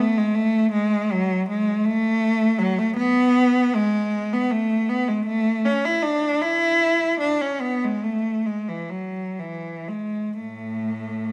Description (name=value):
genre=classical, free, expressive piece for unaccompanied cello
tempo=38-54 BPM (dotted quarters)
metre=6/8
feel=rubato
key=A major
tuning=A4 = 445 Hz
part: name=clear cello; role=solo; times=0.0-11.3 s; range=A2 to E4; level=-22 LUFS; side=equal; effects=none
room=wet recital hall reverb, RT60 1.4 s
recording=dark, warm production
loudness=-22 LUFS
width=mono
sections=0.0-11.3 A section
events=none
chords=none